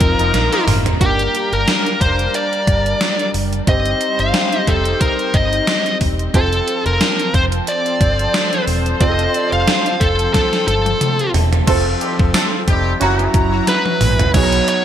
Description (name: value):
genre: 1980s-style pop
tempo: 90 BPM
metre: 4/4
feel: swing 55% on 16ths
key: unclear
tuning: A4 = 441 Hz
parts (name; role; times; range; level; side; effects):
- smooth overdriven lead guitar; melody; 0.0-14.8 s; G4 to F5; -18 LUFS; equal; none
- clear concert grand piano; accompaniment; 0.0-14.8 s; F#3 to Bb5; -24 LUFS; right 4 dB; lush chorus
- overdriven electric guitar; accompaniment; 0.0-1.0, 14.3-14.8 s; F3 to F4; -27 LUFS; right 1 dB; analog chorus
- lush unison pad; sustained chords; 0.0-14.8 s; F3 to Bb5; -24 LUFS; equal; chorus, phaser
- vintage muted fingered electric bass; bass; 0.0-14.6 s; E1 to B1; -20 LUFS; equal; none
- gated 80s digital drum machine; drums; 0.0-14.8 s; crash cymbal, hi-hat, kick drum, snare drum, tambourine, toms; -18 LUFS; equal; gated reverb, gated reverb snare, overdrive
- warm horn section; stabs; 0.2-13.3 s; Gb3 to C5; -24 LUFS; left 2 dB; ping-pong delay
room: moderate plate reverb, RT60 2.4 s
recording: bright 1980s-style digital production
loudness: -14 LUFS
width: side -10 dB against mid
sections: 0.0-1.0 A section; 1.0-11.7 B section; 11.7-14.3 C section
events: band accent 0.0-1.0; drum fill 0.3-1.0, 10.3-11.7, 13.7-14.3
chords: 0.0 F7sus4; 1.0 Gm; 3.7 Cm; 6.3 F; 13.0 Gb7; 14.3 Bmaj7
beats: 0.34 | 1.01 1.68 2.34 3.01 | 3.67 4.34 5.01 5.67 | 6.34 7.01 7.67 8.34 | 9.01 9.68 10.34 11.01 | 11.68 12.34 13.01 13.68 | 14.34